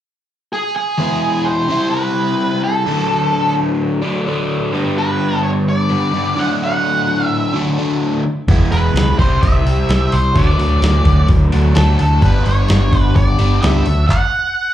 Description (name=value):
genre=blues rock power trio and southern rock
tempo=128 BPM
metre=4/4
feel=straight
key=unclear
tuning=A4 = 440 Hz
part: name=octave-fuzz lead guitar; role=melody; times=0.5-14.7 s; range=G#4 to F#5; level=-19 LUFS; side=equal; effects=distortion, slapback echo
part: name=overdriven semi-hollow guitar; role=riff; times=1.0-13.9 s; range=G2 to E4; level=-17 LUFS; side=left 1 dB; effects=phaser
part: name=overdriven tonewheel organ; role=sustained chords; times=8.5-14.1 s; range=F#3 to G#4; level=-26 LUFS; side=right 1 dB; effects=slow rotary speaker, chorus vibrato
part: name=vintage muted picked electric bass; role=bass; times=8.5-14.0 s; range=E1 to D2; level=-14 LUFS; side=equal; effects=none
part: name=dusty soul sampler-style drum kit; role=drums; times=8.5-14.2 s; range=handclaps, hi-hat, kick drum, snare drum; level=-16 LUFS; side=equal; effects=none
room=light reverb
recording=live gig heard through the venue's PA, club reverb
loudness=-13 LUFS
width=side -12 dB against mid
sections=1.0-14.7 A section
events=stop 14.1-14.7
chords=0.0 N.C.; 1.0 E; 1.7 C; 2.9 D; 4.7 G; 6.4 D; 8.5 E; 9.2 C; 10.4 D; 12.2 G; 13.9 D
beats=0.05 0.52 | 0.98 1.45 1.92 2.39 | 2.86 3.33 3.79 4.26 | 4.73 5.20 5.67 6.14 | 6.61 7.08 7.54 8.01 | 8.48 8.95 9.42 9.88 | 10.35 10.82 11.29 11.76 | 12.22 12.69 13.16 13.63 | 14.10 14.56